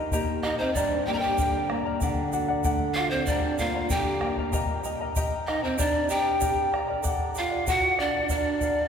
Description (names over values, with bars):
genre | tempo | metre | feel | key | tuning
andean folk, Andean ensemble | 95 BPM | 2/4 | straight | G minor | A4 = 440 Hz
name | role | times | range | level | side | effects
charango | accompaniment | 0.0-8.9 s | G4 to Bb5 | -31 LUFS | left 3 dB | none
nylon-string guitar | accompaniment | 0.0-4.5 s | G2 to G4 | -32 LUFS | right 1 dB | none
bombo | percussion | 0.1-8.8 s | none | -31 LUFS | left 1 dB | none
egg shaker | percussion | 0.1-8.8 s | none | -39 LUFS | right 8 dB | none
breathy pan flute | melody | 0.4-8.9 s | C5 to Bb5 | -27 LUFS | left 1 dB | none
breathy pan flute | second line | 0.4-8.9 s | C4 to Bb4 | -32 LUFS | right 5 dB | none
room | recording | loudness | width
wet cathedral reverb, RT60 4.2 s | recorded in a church or concert hall | -23 LUFS | side -7 dB against mid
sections
0.0-4.5 A section; 4.5-8.9 A section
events
none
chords
0.0 Eb; 0.8 Gm; 2.0 D; 3.3 Gm; 4.5 Eb; 5.8 Gm; 7.0 D; 8.3 Bb